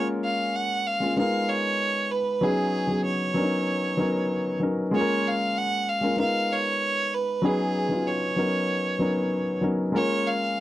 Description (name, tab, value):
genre	soul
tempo	96 BPM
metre	4/4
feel	straight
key	unclear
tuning	A4 = 440 Hz
part	clear fiddle	melody	0.0-10.6 s	G#4 to F#5	-26 LUFS	right 2 dB	none
part	warm grand piano	accompaniment	0.0-10.6 s	F#3 to A#4	-25 LUFS	left 1 dB	none
room	little or no reverb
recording	dry, close 1970s-style studio recording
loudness	-23 LUFS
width	side -15 dB against mid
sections	0.0-10.6 A section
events	none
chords	0.0 A#m7; 1.2 G#m69; 2.4 C#9sus4; 3.4 Bmaj9; 4.9 A#m7; 6.2 G#m69; 7.4 C#9sus4; 8.4 Bmaj9; 9.9 A#m7